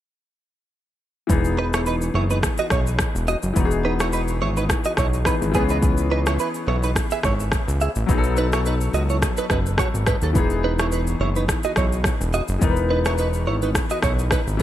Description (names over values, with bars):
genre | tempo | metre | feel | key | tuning
afrobeats | 106 BPM | 4/4 | swing 55% on 16ths | E major | A4 = 441 Hz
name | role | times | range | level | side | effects
clear concert grand piano | accompaniment | 1.3-14.6 s | E3 to B4 | -26 LUFS | left 4 dB | analog chorus
fat analog bass | bass | 1.3-14.6 s | E1 to D#2 | -22 LUFS | equal | none
afro-pop drum kit | drums | 1.3-14.6 s | kick drum, rim click, shaker | -23 LUFS | equal | none
direct-recorded clean electric guitar | riff | 1.6-14.4 s | B3 to E5 | -26 LUFS | right 4 dB | analog chorus, digital delay
room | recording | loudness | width
light reverb, digital ambience | bright 1980s-style digital production | -19 LUFS | side -12 dB against mid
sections
1.3-14.6 A section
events
none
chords
1.3 Emaj7; 5.5 C#m7; 8.1 B7; 10.4 Emaj7